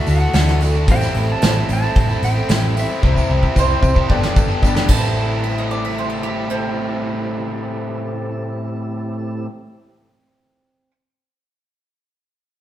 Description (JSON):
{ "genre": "folk rock and heartland rock", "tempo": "112 BPM", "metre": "4/4", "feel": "straight", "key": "A minor", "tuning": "A4 = 440 Hz", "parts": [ { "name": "pedal steel guitar", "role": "melody", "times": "0.0-9.5 s", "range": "E5 to A5", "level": "-29 LUFS", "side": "right 1 dB", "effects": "none" }, { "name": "picked acoustic archtop guitar", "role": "accompaniment", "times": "0.0-9.6 s", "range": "A2 to C5", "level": "-27 LUFS", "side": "left 4 dB", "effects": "none" }, { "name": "tonewheel organ", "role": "sustained chords", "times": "0.0-9.5 s", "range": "B3 to C5", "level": "-33 LUFS", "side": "right 1 dB", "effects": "none" }, { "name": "biting overdriven guitar", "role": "riff", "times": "0.0-9.5 s", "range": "G2 to G4", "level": "-23 LUFS", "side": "equal", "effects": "spring reverb" }, { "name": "hollow-body short-scale fingered electric bass", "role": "bass", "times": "0.1-9.4 s", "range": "G1 to D2", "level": "-20 LUFS", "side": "equal", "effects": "none" }, { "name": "soft brush drum kit", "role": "drums", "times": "0.1-5.0 s", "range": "crash cymbal, hi-hat, kick drum, snare drum", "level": "-18 LUFS", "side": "equal", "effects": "none" }, { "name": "tambourine", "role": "percussion", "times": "0.1-5.4 s", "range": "none", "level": "-37 LUFS", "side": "right 6 dB", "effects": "none" }, { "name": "dark upright piano", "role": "accompaniment", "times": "0.3-9.5 s", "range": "E4 to E5", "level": "-33 LUFS", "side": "right 4 dB", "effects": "none" }, { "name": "bowl-back mandolin", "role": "second line", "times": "3.6-10.9 s", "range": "C4 to E5", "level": "-26 LUFS", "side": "right 5 dB", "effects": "none" } ], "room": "moderate stone room reverb, RT60 1.3 s", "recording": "band playing live in one room", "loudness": "-16 LUFS", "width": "side -12 dB against mid", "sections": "0.0-5.2 A section; 5.2-9.5 B section", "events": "drum fill 3.0-5.2", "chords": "0.0 Dadd9; 0.9 Am7; 3.0 C; 4.1 Gadd9; 4.9 Am7" }